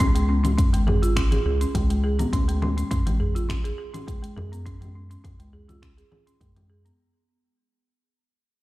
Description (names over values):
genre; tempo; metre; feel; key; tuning
organic downtempo; 103 BPM; 4/4; straight; unclear; A4 = 439 Hz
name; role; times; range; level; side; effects
folk marimba with medium hard mallets; arpeggios; 0.0-6.9 s; G#3 to G#4; -27 LUFS; equal; low-pass filter, tape echo
round analog bass; bass; 0.0-6.9 s; G#1 to F#2; -24 LUFS; equal; tube saturation
afro-pop drum kit; drums; 0.0-7.0 s; congas, finger snaps, hi-hat, shaker; -32 LUFS; left 2 dB; small room ambience
electronic kick drum; drums; 0.0-6.5 s; none; -25 LUFS; equal; small room ambience
udu; percussion; 0.6-5.7 s; none; -30 LUFS; equal; none
room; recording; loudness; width
little or no reverb; played on a big sound system in a bare room, stone room reverb; -20 LUFS; side -18 dB against mid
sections
0.0-7.0 A section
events
fade-out 0.0-7.0; filter sweep on marimba 0.0-7.0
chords
0.0 C#5; 2.3 Bm7 (rootless); 4.7 F#sus2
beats
| 0.00 0.58 1.17 1.75 | 2.33 2.91 3.50 4.08 | 4.66 5.24 5.83 6.41